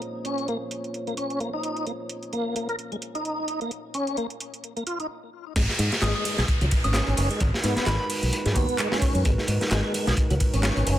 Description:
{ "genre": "breakbeat, breaks", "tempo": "130 BPM", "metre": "4/4", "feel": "swing 56% on 16ths", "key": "G# dorian", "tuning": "A4 = 439 Hz", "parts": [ { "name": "dark analog pad", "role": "sustained chords", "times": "0.0-11.0 s", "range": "G#3 to C#5", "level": "-34 LUFS", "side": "right 2 dB", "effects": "chorus, sidechain pumping" }, { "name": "house drum kit", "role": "drums", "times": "0.0-11.0 s", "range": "handclaps, hi-hat, ride cymbal", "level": "-33 LUFS", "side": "right 2 dB", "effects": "low-pass filter on hats, low-pass filter on cymbals, low-pass filter on snare, low-pass filter on room" }, { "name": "tonewheel organ", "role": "riff", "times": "0.3-11.0 s", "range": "F#3 to A#4", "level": "-30 LUFS", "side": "equal", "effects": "chorus vibrato, slow rotary speaker, ping-pong delay" }, { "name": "fingered electric bass", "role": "bass", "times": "5.6-11.0 s", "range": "F#1 to G#2", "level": "-24 LUFS", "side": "equal", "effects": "none" }, { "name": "crunchy breakbeat drum kit", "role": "drums", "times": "5.6-11.0 s", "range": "crash cymbal, hi-hat, kick drum, snare drum", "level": "-25 LUFS", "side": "equal", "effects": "none" }, { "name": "downlifter", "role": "sound effects", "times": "5.6-9.3 s", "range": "none", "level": "-34 LUFS", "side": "equal", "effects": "none" }, { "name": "soft synth bell", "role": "melody", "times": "6.0-8.1 s", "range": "B5 to D#6", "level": "-34 LUFS", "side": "equal", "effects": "chorus, phaser, AM radio sound, ping-pong delay" } ], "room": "small room ambience", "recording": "none", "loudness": "-23 LUFS", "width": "side -12 dB against mid", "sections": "0.0-5.6 A section; 5.6-11.0 B section", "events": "filter sweep on analog synth pad 0.0-5.6; stop 5.1-5.6; drop 5.6-11.0", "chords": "0.0 A#m9; 5.6 G#m9" }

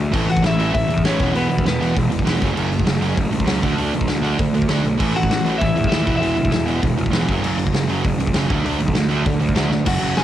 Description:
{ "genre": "punk rock", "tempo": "197 BPM", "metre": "4/4", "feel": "straight", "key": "unclear", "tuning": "A4 = 440 Hz", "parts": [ { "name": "tight distorted guitar", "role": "riff", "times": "0.0-10.2 s", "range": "F#2 to D4", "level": "-26 LUFS", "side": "left 7 dB", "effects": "distortion, cassette tape" }, { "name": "fuzz picked electric bass", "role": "bass", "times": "0.0-10.2 s", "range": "E1 to E2", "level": "-22 LUFS", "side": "equal", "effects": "overdrive" }, { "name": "sludgy distorted guitar", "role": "riff", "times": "0.1-10.2 s", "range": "E2 to D4", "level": "-22 LUFS", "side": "right 7 dB", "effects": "overdrive, cassette tape" }, { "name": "big rock drum kit", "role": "drums", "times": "0.1-10.2 s", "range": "crash cymbal, hi-hat, kick drum, snare drum", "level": "-22 LUFS", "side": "equal", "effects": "cassette tape" }, { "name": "lightly driven lead guitar", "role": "melody", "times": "0.3-2.0, 5.2-6.8, 9.9-10.2 s", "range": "B3 to G#5", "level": "-23 LUFS", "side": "left 2 dB", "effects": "cassette tape, analog delay" } ], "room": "light reverb", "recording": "home recording on cassette", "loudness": "-16 LUFS", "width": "side -12 dB against mid", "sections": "0.0-9.9 A section", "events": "drum fill 9.7", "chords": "0.1 A; 1.2 E; 2.4 F#m; 3.6 D5; 5.0 A5; 6.1 E; 7.3 F#5; 8.5 D" }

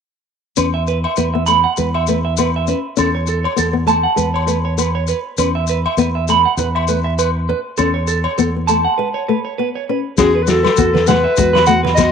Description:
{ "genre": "highlife guitar band", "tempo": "100 BPM", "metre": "4/4", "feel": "swing 55% on 16ths", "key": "E major", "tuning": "A4 = 440 Hz", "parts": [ { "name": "nylon-string guitar", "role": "accompaniment", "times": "0.6-12.1 s", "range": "E3 to C#4", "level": "-20 LUFS", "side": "left 10 dB", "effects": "none" }, { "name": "clean electric guitar", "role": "arpeggios", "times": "0.6-12.1 s", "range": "F#4 to B5", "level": "-18 LUFS", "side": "right 8 dB", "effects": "slapback echo" }, { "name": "fingered electric bass", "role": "bass", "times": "0.6-12.1 s", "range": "E2", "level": "-20 LUFS", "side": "equal", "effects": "none" }, { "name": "agogo bells", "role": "percussion", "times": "0.6-12.1 s", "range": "none", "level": "-24 LUFS", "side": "left 12 dB", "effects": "none" }, { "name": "maracas", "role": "percussion", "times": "0.6-12.1 s", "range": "none", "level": "-26 LUFS", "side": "left 12 dB", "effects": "none" }, { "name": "clear clarinet", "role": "melody", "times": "10.2-12.1 s", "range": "G#4 to F#5", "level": "-15 LUFS", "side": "left 2 dB", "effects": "none" }, { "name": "vintage drum kit", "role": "drums", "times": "10.2-12.1 s", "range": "kick drum, snare drum", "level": "-19 LUFS", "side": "left 5 dB", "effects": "none" }, { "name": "congas", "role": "percussion", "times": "10.9-12.0 s", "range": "none", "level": "-22 LUFS", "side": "right 8 dB", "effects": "none" } ], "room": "moderate spring reverb, RT60 1.8 s, small room reverb", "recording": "1960s-style stereo with parts hard left and right", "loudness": "-14 LUFS", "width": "side -7 dB against mid", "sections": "0.6-10.2 A section; 10.2-12.1 B section", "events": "break 9.0-10.2", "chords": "0.6 E5; 3.0 F#m/E (rootless); 4.2 Aadd9/E; 5.4 E5; 9.0 Aadd9; 10.2 Esus2" }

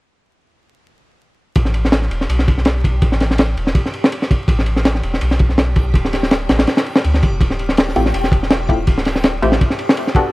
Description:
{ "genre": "drum and bass, jungle", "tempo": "164 BPM", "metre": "4/4", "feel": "swing 54% on 16ths", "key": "unclear", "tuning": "A4 = 439 Hz", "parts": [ { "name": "soft dub sub bass", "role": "bass", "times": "1.6-9.6 s", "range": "D1 to D2", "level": "-18 LUFS", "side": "equal", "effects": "none" }, { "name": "crunchy breakbeat drum kit", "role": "drums", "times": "1.6-10.2 s", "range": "kick drum, ride cymbal, snare drum", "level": "-15 LUFS", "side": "equal", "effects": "none" }, { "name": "backwards swelling texture", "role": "texture", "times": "2.3-10.3 s", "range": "G4", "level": "-30 LUFS", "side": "left 2 dB", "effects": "built-in reverb" }, { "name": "filtered dub chord stab", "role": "stabs", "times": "8.0-10.3 s", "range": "A3 to A4", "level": "-20 LUFS", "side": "left 1 dB", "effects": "chorus, dub echo" } ], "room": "small room reverb", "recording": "vinyl crackle", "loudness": "-13 LUFS", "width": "side -20 dB against mid", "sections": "1.6-10.3 A section", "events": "none", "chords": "1.6 Asus2; 5.9 Dm11; 9.6 Em11 (rootless)" }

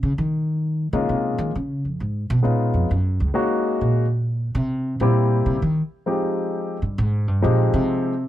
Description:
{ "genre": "jazz piano trio", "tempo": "132 BPM", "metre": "3/4", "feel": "swing 68% on 8ths", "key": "F minor", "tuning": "A4 = 441 Hz", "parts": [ { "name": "upright bass", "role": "bass", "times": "0.0-8.2 s", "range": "Db2 to Eb3", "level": "-20 LUFS", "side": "right 1 dB", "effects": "none" }, { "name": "warm concert grand piano", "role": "melody", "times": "0.9-8.1 s", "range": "F3 to G4", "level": "-22 LUFS", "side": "left 2 dB", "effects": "none" } ], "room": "little or no reverb", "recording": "dark, warm production", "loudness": "-19 LUFS", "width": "side -13 dB against mid", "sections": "0.0-8.3 A section", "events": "upright bass solo 0.0-8.3", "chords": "0.2 Db6; 1.5 Db7; 2.9 Gb69; 4.2 C7; 5.6 Fm7" }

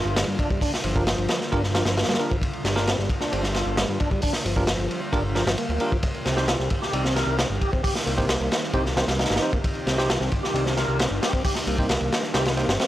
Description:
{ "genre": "breakbeat, breaks", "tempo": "133 BPM", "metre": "4/4", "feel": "straight", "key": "G minor", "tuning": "A4 = 440 Hz", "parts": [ { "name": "warbly tape-like pad", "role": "sustained chords", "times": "0.0-12.9 s", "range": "D3 to G4", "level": "-33 LUFS", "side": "right 1 dB", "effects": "chorus, built-in reverb, sidechain pumping" }, { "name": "tonewheel organ", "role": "riff", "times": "0.0-12.9 s", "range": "F3 to Bb4", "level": "-29 LUFS", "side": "equal", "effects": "overdrive, fast rotary speaker, analog delay" }, { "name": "fat analog bass", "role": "bass", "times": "0.0-12.8 s", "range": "D1 to G2", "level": "-26 LUFS", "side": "equal", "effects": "none" }, { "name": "crunchy breakbeat drum kit", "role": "drums", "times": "0.2-12.9 s", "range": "hi-hat, kick drum, ride cymbal, snare drum", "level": "-24 LUFS", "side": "equal", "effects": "none" }, { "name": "bell-like tine electric piano", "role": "stabs", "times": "1.0-12.6 s", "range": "C4 to D5", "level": "-31 LUFS", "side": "right 2 dB", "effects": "vintage 12-bit sampler grit, analog delay" } ], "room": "small room reverb", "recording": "dry, gritty hardware recording", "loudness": "-21 LUFS", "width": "side -14 dB against mid", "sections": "0.0-12.9 A section", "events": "none", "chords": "0.0 Gm7; 6.0 Cm" }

